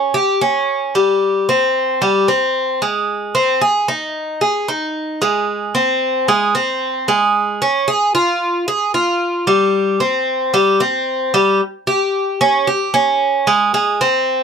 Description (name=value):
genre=latin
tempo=113 BPM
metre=4/4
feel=straight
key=unclear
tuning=A4 = 439 Hz
part: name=Cuban tres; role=solo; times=0.0-14.4 s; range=G3 to Ab4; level=-14 LUFS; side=equal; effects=none
room=light reverb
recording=close, detailed microphones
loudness=-14 LUFS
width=side -6 dB against mid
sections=0.0-11.6 A section; 11.6-14.4 B section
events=none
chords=none